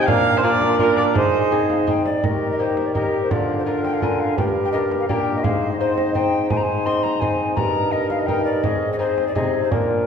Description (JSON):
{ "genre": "classical, renaissance-style consort dance", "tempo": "168 BPM", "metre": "3/4", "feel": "straight", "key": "unclear", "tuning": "A4 = 440 Hz", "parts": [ { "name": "mellow hollow tenor recorder", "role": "melody", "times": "0.0-10.1 s", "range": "Bb4 to C6", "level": "-25 LUFS", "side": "left 4 dB", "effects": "none" }, { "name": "warm viola", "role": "second line", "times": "0.0-10.1 s", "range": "F4 to G5", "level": "-26 LUFS", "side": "right 4 dB", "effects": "none" }, { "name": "brilliant trombone", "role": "accompaniment", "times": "0.0-10.0 s", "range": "C4 to G4", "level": "-25 LUFS", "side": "left 2 dB", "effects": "none" }, { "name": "lute", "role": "accompaniment", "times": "0.0-10.1 s", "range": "G2 to C5", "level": "-25 LUFS", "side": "left 2 dB", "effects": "none" }, { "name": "warm bassoon", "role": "bass", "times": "0.0-10.1 s", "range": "G2 to Eb3", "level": "-24 LUFS", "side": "right 2 dB", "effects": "none" }, { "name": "frame drum", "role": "percussion", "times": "0.1-9.9 s", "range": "none", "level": "-26 LUFS", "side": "right 2 dB", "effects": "none" } ], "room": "wet concert hall reverb, RT60 1.7 s", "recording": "recorded in a church or concert hall", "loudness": "-17 LUFS", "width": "side -7 dB against mid", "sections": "0.0-2.2 A section; 2.2-10.1 B section", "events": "none", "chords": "0.1 Bb; 1.2 Ab; 2.2 Eb; 3.3 Bb/D; 4.4 Gm; 5.4 Ab; 7.6 Eb/G; 8.6 Ab" }